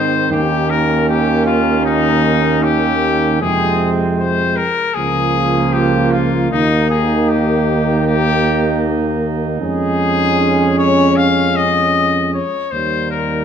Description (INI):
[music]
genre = classical, brass quintet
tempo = 77 BPM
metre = 4/4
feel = straight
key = unclear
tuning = A4 = 438 Hz
[part]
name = warm trumpet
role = melody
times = 0.0-13.4 s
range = Eb4 to F5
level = -17 LUFS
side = left 6 dB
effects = none
[part]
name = warm flugelhorn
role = second line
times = 0.0-13.4 s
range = Bb3 to Eb4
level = -22 LUFS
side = right 8 dB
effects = none
[part]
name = clear trombone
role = accompaniment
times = 0.0-13.4 s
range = C3 to Ab3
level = -22 LUFS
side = right 4 dB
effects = none
[part]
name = warm French horn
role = accompaniment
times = 0.0-13.4 s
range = Ab3 to Db4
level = -20 LUFS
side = left 2 dB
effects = none
[part]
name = mellow tuba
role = bass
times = 0.0-13.4 s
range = Db2 to Ab2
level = -20 LUFS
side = right 4 dB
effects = none
[sound]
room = wet recital hall reverb, RT60 1.5 s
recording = none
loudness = -13 LUFS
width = side -8 dB against mid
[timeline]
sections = 0.0-13.4 A section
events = none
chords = 0.3 Eb7; 3.4 Fm; 5.0 Bbm7/Db; 6.5 Eb; 9.6 Db/F; 12.7 Eb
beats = | 0.32 1.09 1.87 2.64 | 3.42 4.20 4.96 5.74 | 6.51 7.29 8.06 8.83 | 9.61 10.39 11.16 11.94 | 12.72